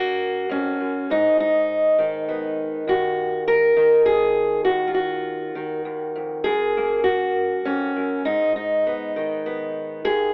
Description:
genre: folk, solo fingerstyle acoustic guitar.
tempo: 100 BPM.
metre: 3/4.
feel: straight.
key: unclear.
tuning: A4 = 440 Hz.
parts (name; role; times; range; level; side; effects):
fingerpicked steel-string acoustic guitar; solo; 0.0-10.3 s; Eb2 to Bb4; -22 LUFS; equal; none.
room: moderate studio reverb, RT60 0.6 s.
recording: band playing live in one room, telephone sound.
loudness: -22 LUFS.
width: mono.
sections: 0.0-10.3 A section.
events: none.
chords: 0.0 Gb; 1.1 Abm; 2.9 N.C.; 4.7 Ebmadd9; 6.5 Gb; 8.3 Abm.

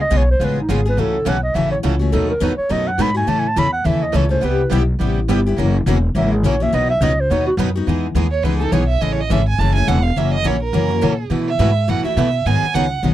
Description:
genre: acoustic string swing (jazz manouche).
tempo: 209 BPM.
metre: 4/4.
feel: swing 57% on 8ths.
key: E major.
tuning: A4 = 442 Hz.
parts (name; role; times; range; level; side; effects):
breathy clarinet; melody; 0.0-7.5 s; D#4 to B5; -20 LUFS; right 1 dB; none.
upright bass; bass; 0.0-13.1 s; E1 to B2; -18 LUFS; equal; none.
picked steel-string acoustic guitar; accompaniment; 0.1-13.1 s; B2 to A4; -21 LUFS; left 5 dB; none.
picked swing-style acoustic guitar; accompaniment; 0.1-13.1 s; B2 to B4; -26 LUFS; right 10 dB; none.
warm violin; second line; 8.3-13.0 s; A4 to A5; -21 LUFS; right 8 dB; none.
room: little or no reverb.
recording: dry, close 1970s-style studio recording.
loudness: -15 LUFS.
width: side -13 dB against mid.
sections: 0.0-7.9 A section; 7.9-13.1 A section.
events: clarinet solo 0.0-7.9; violin solo 7.9-13.1.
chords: 0.0 C#7; 1.0 F#m7; 2.1 B7; 3.3 A; 4.4 Cmaj7; 5.6 F#7; 6.7 B; 7.9 Emaj7; 9.0 Amaj7; 10.2 F#7; 11.3 B7sus4; 12.5 G#m7.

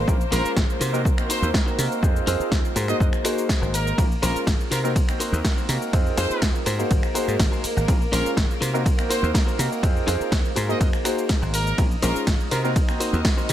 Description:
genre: filtered disco house.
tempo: 123 BPM.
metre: 4/4.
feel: straight.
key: Bb minor.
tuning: A4 = 441 Hz.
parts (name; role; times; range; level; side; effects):
dark grand piano; accompaniment; 0.0-13.5 s; Ab3 to C5; -28 LUFS; equal; phaser, sidechain pumping.
dark studio string section; sustained chords; 0.0-13.5 s; Bb3 to Eb5; -32 LUFS; right 1 dB; sidechain pumping.
dry thumbed slap bass; bass; 0.0-13.5 s; Ab1 to C3; -25 LUFS; equal; sidechain pumping.
electronic kick drum; drums; 0.1-13.3 s; none; -22 LUFS; equal; overdrive.
punchy analog drum machine; drums; 0.1-13.5 s; finger snaps, hi-hat, ride cymbal, shaker, snare drum; -28 LUFS; equal; overdrive, sidechain pumping on perc, sidechain pumping on hats, sidechain pumping on cymbals.
clear trumpet section; melody; 0.3-12.7 s; Bb4 to Eb5; -30 LUFS; equal; sidechain pumping.
direct-recorded clean electric guitar; riff; 0.3-13.5 s; Db4 to C5; -31 LUFS; left 2 dB; sidechain pumping.
room: light reverb, digital ambience.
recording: none.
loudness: -19 LUFS.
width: side -11 dB against mid.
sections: 0.0-13.5 A section.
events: none.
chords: 0.1 Bbm9; 0.8 Cm7b5; 2.0 Fm7; 2.8 Ab9; 4.0 Bbm9; 4.7 Cm7b5; 5.9 Fm7; 6.7 Ab9; 7.9 Bbm9; 8.6 Cm7b5; 9.8 Fm7; 10.6 Ab9; 11.8 Bbm9; 12.5 Cm7b5.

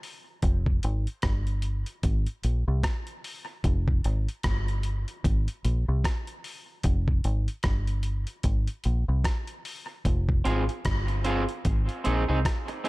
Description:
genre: dub reggae.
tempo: 75 BPM.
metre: 4/4.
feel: swing 59% on 16ths.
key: F minor.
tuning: A4 = 441 Hz.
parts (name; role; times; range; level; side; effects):
dusty soul sampler-style drum kit; drums; 0.0-12.9 s; hi-hat, kick drum, rim click; -28 LUFS; equal; none.
deep dub fingered electric bass; bass; 0.4-12.4 s; F1 to C2; -26 LUFS; equal; none.
electric guitar at the edge of break-up; accompaniment; 10.4-12.9 s; C4 to Ab4; -29 LUFS; right 2 dB; dub echo.
room: little or no reverb.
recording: echo-heavy mix.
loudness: -25 LUFS.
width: side -21 dB against mid.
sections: 0.0-12.9 A section.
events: break 0.0-10.0.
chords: 0.4 Fm; 2.0 Ab; 3.6 Fm; 5.2 Ab; 6.8 Fm; 8.4 Ab; 10.0 Fm; 11.6 Ab.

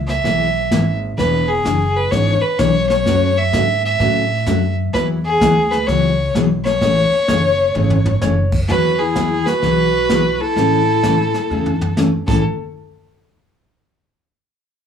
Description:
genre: country, western swing.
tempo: 128 BPM.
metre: 4/4.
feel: swing 66% on 8ths.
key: A major.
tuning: A4 = 441 Hz.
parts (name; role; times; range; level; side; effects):
upright bass; bass; 0.0-12.4 s; E1 to A2; -20 LUFS; left 1 dB; none.
clear fiddle; melody; 0.1-12.4 s; G#4 to E5; -18 LUFS; equal; none.
jazz brush drum kit; drums; 0.1-12.4 s; brushed snare drum, crash cymbal, hi-hat, kick drum, snare drum, toms; -23 LUFS; left 1 dB; none.
picked steel-string acoustic guitar; accompaniment; 0.2-12.4 s; A2 to G#4; -20 LUFS; equal; none.
clean lap steel guitar; second line; 7.3-8.6 s; C#5; -21 LUFS; left 9 dB; none.
breathy clarinet; second line; 8.7-12.4 s; E4 to F#4; -22 LUFS; left 1 dB; none.
room: moderate club reverb, RT60 0.7 s.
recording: none.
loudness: -14 LUFS.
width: side -8 dB against mid.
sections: 0.0-8.7 A section; 8.7-12.4 B section; 12.4-14.3 C section.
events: drum fill 7.8-8.2, 11.5-12.0.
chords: 0.0 E; 1.2 E7; 3.1 F#m; 4.9 Eadd9; 6.8 Amaj7; 8.7 Eadd9; 10.6 Amaj7; 12.4 N.C..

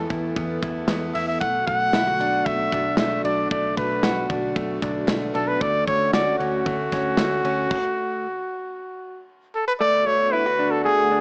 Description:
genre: jangly indie pop.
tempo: 114 BPM.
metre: 4/4.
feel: straight.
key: B minor.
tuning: A4 = 441 Hz.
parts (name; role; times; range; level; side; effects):
warm trumpet; melody; 0.0-11.2 s; F#4 to F#5; -24 LUFS; equal; none.
phased analog pad; sustained chords; 0.0-11.2 s; D3 to A4; -36 LUFS; equal; phaser, chorus.
direct-recorded clean electric guitar; arpeggios; 0.0-11.2 s; E3 to A4; -29 LUFS; equal; none.
vintage muted picked electric bass; bass; 0.0-7.7 s; B1 to E2; -36 LUFS; equal; none.
modern studio drum kit; drums; 0.1-7.8 s; crash cymbal, hi-hat, kick drum, ride cymbal, snare drum; -29 LUFS; equal; vintage 12-bit sampler grit.
group handclap; percussion; 0.6-7.3 s; none; -42 LUFS; equal; none.
room: moderate studio reverb, RT60 0.6 s.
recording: small speaker sound.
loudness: -23 LUFS.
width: mono.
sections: 0.0-9.8 A section; 9.8-11.2 A section.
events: stop 7.7-9.8.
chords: 0.0 Esus4; 1.4 Bm7; 5.6 Dmaj7; 9.8 Bm7.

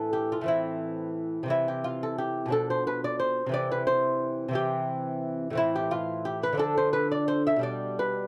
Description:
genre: classical, baroque-style dance for lute.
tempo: 59 BPM (dotted quarters).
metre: 6/8.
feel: rubato.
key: unclear.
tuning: A4 = 440 Hz.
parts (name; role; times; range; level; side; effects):
lute; solo; 0.0-8.3 s; A2 to E5; -28 LUFS; equal; none.
room: studio reverb.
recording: dry, close 1970s-style studio recording.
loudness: -28 LUFS.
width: mono.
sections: 0.0-8.3 A section.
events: none.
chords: 0.0 Am; 1.5 C; 2.5 Bm7b5; 3.5 C; 5.6 Am; 6.6 Dm; 7.6 G/B.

